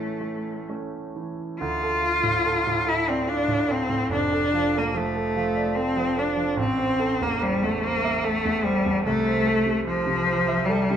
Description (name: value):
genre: classical, romantic duo for cello and grand piano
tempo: 73 BPM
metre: 3/4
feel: uneven beats, rubato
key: D minor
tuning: A4 = 440 Hz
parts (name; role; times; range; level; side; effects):
- clear cello; melody; 0.0-11.0 s; F3 to F4; -23 LUFS; left 2 dB; none
- clear concert grand piano; accompaniment; 0.0-11.0 s; F1 to E5; -27 LUFS; right 4 dB; none
room: moderate recital hall reverb, RT60 1.8 s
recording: minimal, uncompressed stereo recording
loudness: -21 LUFS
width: side -8 dB against mid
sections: 0.0-1.6 A section; 1.6-11.0 B section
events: none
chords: 0.0 A; 1.6 Dm; 4.1 Dm/F; 6.6 Am; 9.0 Am/C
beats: 0.69 | 1.60 2.45 3.29 | 4.12 4.96 5.76 | 6.58 7.42 8.23 | 9.05 9.86 10.67